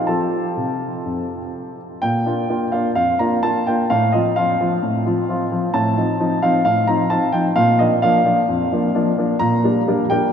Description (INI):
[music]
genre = classical-period piano sonatina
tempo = 130 BPM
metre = 4/4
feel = rubato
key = Bb major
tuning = A4 = 441 Hz
[part]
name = warm baby grand piano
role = solo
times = 0.0-10.3 s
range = F2 to Bb5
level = -16 LUFS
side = equal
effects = none
[sound]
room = wet cathedral reverb, RT60 6.9 s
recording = in a vast, echoing space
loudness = -16 LUFS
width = side -7 dB against mid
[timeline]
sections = 0.0-2.0 A section; 2.0-10.3 B section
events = none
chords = 0.1 F; 2.0 Bb; 3.9 F/A; 5.7 F7/A; 7.6 Bb; 9.4 Gm/Bb